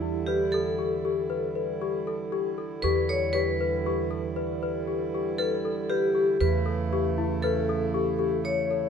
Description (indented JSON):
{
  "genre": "contemporary instrumental, chamber music in an uneven meter",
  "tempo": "117 BPM",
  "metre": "7/4",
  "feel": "straight",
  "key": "E dorian",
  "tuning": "A4 = 441 Hz",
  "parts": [
    { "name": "vibraphone with hard mallets", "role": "second line", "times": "0.0-8.9 s", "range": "E4 to C#5", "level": "-29 LUFS", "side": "equal", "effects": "none" },
    { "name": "pedal harmonium", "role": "sustained chords", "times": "0.0-8.9 s", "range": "C#3 to E4", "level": "-33 LUFS", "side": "right 5 dB", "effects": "none" },
    { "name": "celesta", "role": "arpeggios", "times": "0.0-8.9 s", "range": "E4 to B4", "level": "-30 LUFS", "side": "left 10 dB", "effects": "none" },
    { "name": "upright bass", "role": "bass", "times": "0.0-8.9 s", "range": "E2", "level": "-32 LUFS", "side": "right 4 dB", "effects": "none" }
  ],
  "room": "moderate concert hall reverb, RT60 2.5 s",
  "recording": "close, detailed microphones",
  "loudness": "-25 LUFS",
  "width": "side -7 dB against mid",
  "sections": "0.0-8.9 A section",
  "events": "none",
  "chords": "0.0 Em7; 6.4 A/E",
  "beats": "0.28 0.79 1.30 1.81 2.33 | 2.84 3.35 3.86 4.37 4.88 5.39 5.90 | 6.41 6.92 7.43 7.95 8.46"
}